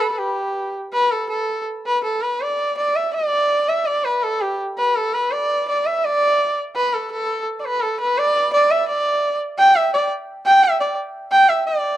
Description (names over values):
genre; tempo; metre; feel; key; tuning
indian classical; 161-175 BPM; 4/4; straight; D raga durga; A4 = 440 Hz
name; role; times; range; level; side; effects
rich sarangi; solo; 0.0-12.0 s; G4 to G5; -17 LUFS; equal; none
room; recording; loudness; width
light reverb; minimal, uncompressed stereo recording; -17 LUFS; side -13 dB against mid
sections
0.2-11.7 A section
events
speeding up 0.0-12.0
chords
none